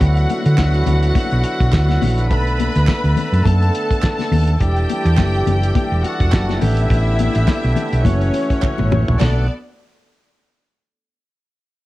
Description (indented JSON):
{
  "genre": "disco",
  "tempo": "104 BPM",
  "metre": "4/4",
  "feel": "swing 56% on 16ths",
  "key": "B minor",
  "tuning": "A4 = 440 Hz",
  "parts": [
    { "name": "clear studio string section", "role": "second line", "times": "0.0-9.5 s", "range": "B3 to B5", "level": "-23 LUFS", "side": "left 1 dB", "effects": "none" },
    { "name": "overdriven tonewheel organ", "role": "sustained chords", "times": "0.0-9.5 s", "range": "D3 to A4", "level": "-24 LUFS", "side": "right 1 dB", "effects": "slow rotary speaker" },
    { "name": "hollow-body short-scale fingered electric bass", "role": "bass", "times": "0.0-9.5 s", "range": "E1 to D3", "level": "-16 LUFS", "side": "equal", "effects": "tube saturation" },
    { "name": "damped 70s drum kit", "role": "drums", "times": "0.0-9.4 s", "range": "hi-hat, kick drum, ride cymbal, snare drum, toms", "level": "-20 LUFS", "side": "equal", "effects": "cassette tape" },
    { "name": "congas", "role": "percussion", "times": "0.0-9.5 s", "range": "none", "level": "-25 LUFS", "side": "left 8 dB", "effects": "none" },
    { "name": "group handclap", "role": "percussion", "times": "0.6-9.5 s", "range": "none", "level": "-31 LUFS", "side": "right 10 dB", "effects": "none" }
  ],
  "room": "light reverb",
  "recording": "home recording on cassette",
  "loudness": "-14 LUFS",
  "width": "side -17 dB against mid",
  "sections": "0.0-9.2 A section; 9.2-11.5 B section",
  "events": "drum fill 8.6-9.2",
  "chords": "0.0 D69; 2.3 Bm7; 4.6 Em9; 6.6 A9sus4; 8.1 F#m7; 9.2 Bm7"
}